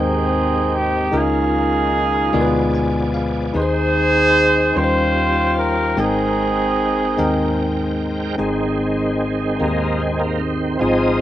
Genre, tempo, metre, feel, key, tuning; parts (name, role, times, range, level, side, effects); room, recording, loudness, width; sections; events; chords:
slow gospel; 50 BPM (dotted quarters); 6/8; straight; Ab major; A4 = 438 Hz
warm horn section; melody; 0.0-8.0 s; C4 to C5; -18 LUFS; right 1 dB
bell-like tine electric piano; accompaniment; 0.0-11.2 s; Ab2 to Ab5; -21 LUFS; left 2 dB
bright tonewheel organ; sustained chords; 0.0-11.2 s; Eb3 to G5; -24 LUFS; right 2 dB; slow rotary speaker, overdrive, chorus vibrato
hollow-body short-scale fingered electric bass; bass; 0.0-11.2 s; Ab1 to Eb2; -25 LUFS; equal
light reverb; rough home demo mix; -16 LUFS; side -12 dB against mid
0.0-8.4 A section; 8.4-11.2 B section
tine electric piano fill 2.3-3.5; tonewheel organ solo 8.4-11.2
0.0 Abmaj7; 1.1 Db69; 2.3 Ddim7; 3.5 Ab/Eb; 4.8 Eb13; 6.0 Abmaj9